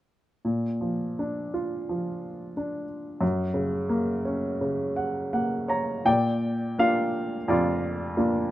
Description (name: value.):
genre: classical, lyrical solo piano.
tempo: 80-91 BPM.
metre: 4/4.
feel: rubato.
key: unclear.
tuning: A4 = 439 Hz.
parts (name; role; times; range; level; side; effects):
warm upright piano; solo; 0.4-8.5 s; F2 to Bb5; -25 LUFS; equal; none.
room: light reverb.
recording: none.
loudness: -25 LUFS.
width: side -14 dB against mid.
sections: 0.5-6.1 A section; 6.1-8.5 B section.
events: upright piano fill 4.6-6.1.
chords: 0.5 Bb; 3.2 Gb; 6.1 Bb.